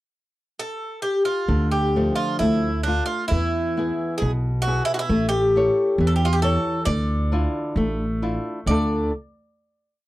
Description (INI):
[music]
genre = fado-style ballad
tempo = 67 BPM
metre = 2/4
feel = rubato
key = D harmonic minor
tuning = A4 = 443 Hz
[part]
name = Irish bouzouki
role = melody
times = 0.6-9.1 s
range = D4 to D5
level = -23 LUFS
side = equal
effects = none
[part]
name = flamenco guitar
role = accompaniment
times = 1.5-9.1 s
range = B2 to C#5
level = -25 LUFS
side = left 1 dB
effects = none
[part]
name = upright bass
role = bass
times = 1.5-9.1 s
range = A1 to E2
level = -23 LUFS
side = equal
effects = none
[sound]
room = light reverb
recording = dry, close 1970s-style studio recording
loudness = -20 LUFS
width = side -16 dB against mid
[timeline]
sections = 0.0-1.5 pickup bar; 1.5-8.7 A section; 8.7-10.1 final chord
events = none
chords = 0.0 N.C.; 1.5 Dm; 3.3 E; 5.1 A; 6.9 Dmadd9; 8.7 Dm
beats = 0.58 | 1.49 2.41 | 3.32 4.22 | 5.10 5.99 | 6.87 7.76 | 8.68